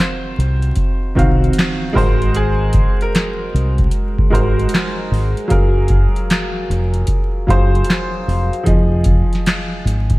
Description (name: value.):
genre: lo-fi hip hop.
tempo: 76 BPM.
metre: 4/4.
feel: swing 65% on 16ths.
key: unclear.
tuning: A4 = 439 Hz.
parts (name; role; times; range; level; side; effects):
bright upright piano; melody; 0.0-4.7 s; Ab4 to C5; -28 LUFS; left 2 dB; low-pass filter, tape echo.
warm upright piano; accompaniment; 0.0-10.2 s; Eb3 to F5; -20 LUFS; equal; low-pass filter.
booming analog drum machine; drums; 0.0-10.2 s; handclaps, hi-hat, kick drum, snare drum; -17 LUFS; equal; none.
deep dub fingered electric bass; bass; 0.4-10.2 s; F1 to C2; -16 LUFS; equal; none.
room: light reverb, small room ambience.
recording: vinyl crackle.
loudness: -14 LUFS.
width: side -19 dB against mid.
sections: 0.0-10.2 A section.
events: none.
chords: 0.0 Ebm69; 2.0 Ab9; 5.5 Gbmaj9; 8.7 Fm7.